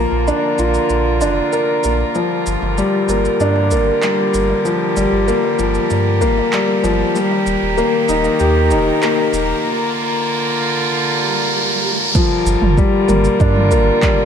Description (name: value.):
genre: piano and strings electronica.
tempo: 96 BPM.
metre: 4/4.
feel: straight.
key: G minor.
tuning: A4 = 440 Hz.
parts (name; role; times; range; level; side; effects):
dark string quartet; sustained chords; 0.0-14.2 s; D3 to Bb4; -21 LUFS; equal; sidechain pumping.
warm grand piano; riff; 0.0-14.2 s; F3 to Bb4; -16 LUFS; left 1 dB; digital delay.
warm sub bass; bass; 0.0-13.9 s; Eb1 to G2; -19 LUFS; right 1 dB; sidechain pumping.
riser and swell; sound effects; 0.5-12.2 s; none; -25 LUFS; right 3 dB; none.
organic electronic drum kit; drums; 0.3-14.2 s; crash cymbal, handclaps, shaker, toms; -25 LUFS; right 2 dB; high-pass filter on perc, high-pass filter on toms, high-pass filter on snare, high-pass filter on cymbals.
electronic kick drum; drums; 12.2-14.2 s; none; -16 LUFS; right 1 dB; overdrive.
room: moderate echo chamber reverb, RT60 2.2 s.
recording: none.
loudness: -13 LUFS.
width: side -7 dB against mid.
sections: 0.0-12.2 A section; 12.2-14.2 B section.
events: build-up 0.0-12.2; riser 0.5-12.2; break 9.7-12.2; swell 10.9-12.2; drop 12.2-14.2.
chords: 0.0 Bb; 2.2 Gm7; 7.2 Eb; 9.7 Bb; 12.2 Gm7.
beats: 0.28 0.90 1.53 | 2.15 2.78 3.40 4.03 | 4.65 5.28 5.90 6.53 | 7.15 7.78 8.40 9.03 | 9.65 10.28 10.90 11.53 | 12.15 12.78 13.40 14.03.